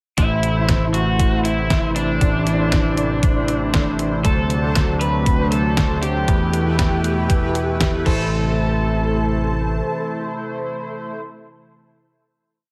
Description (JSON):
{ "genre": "synthwave", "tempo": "118 BPM", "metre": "4/4", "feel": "straight", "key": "A dorian", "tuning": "A4 = 436 Hz", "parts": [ { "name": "lead guitar through a small cranked amp", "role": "melody", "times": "0.2-11.2 s", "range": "D4 to B4", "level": "-27 LUFS", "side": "equal", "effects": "overdrive, tape echo" }, { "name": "airy dreamy lead", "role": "second line", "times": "0.2-11.2 s", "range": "D5 to B5", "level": "-33 LUFS", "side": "equal", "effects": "chorus, tape echo" }, { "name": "warm analog pad", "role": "sustained chords", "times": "0.2-11.2 s", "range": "B2 to E4", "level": "-28 LUFS", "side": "equal", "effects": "chorus, sidechain pumping" }, { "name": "mellow synth brass", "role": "stabs", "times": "0.2-11.2 s", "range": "A2 to C5", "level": "-29 LUFS", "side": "equal", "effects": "chorus" }, { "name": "picked electric bass", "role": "bass", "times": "0.2-9.8 s", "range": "A1 to E2", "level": "-24 LUFS", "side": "equal", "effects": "none" }, { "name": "detuned 8-bit digital drum machine", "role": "drums", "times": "0.2-8.2 s", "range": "crash cymbal, hi-hat, snare drum", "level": "-27 LUFS", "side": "equal", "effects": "overdrive" }, { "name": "electronic kick drum", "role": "drums", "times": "0.2-8.2 s", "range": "none", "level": "-22 LUFS", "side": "equal", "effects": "overdrive" } ], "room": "light reverb", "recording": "none", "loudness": "-19 LUFS", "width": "mono", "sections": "0.2-8.3 chorus; 8.3-12.4 final hit", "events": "none", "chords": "0.2 Am; 4.2 D7; 6.3 Esus4; 8.1 Am" }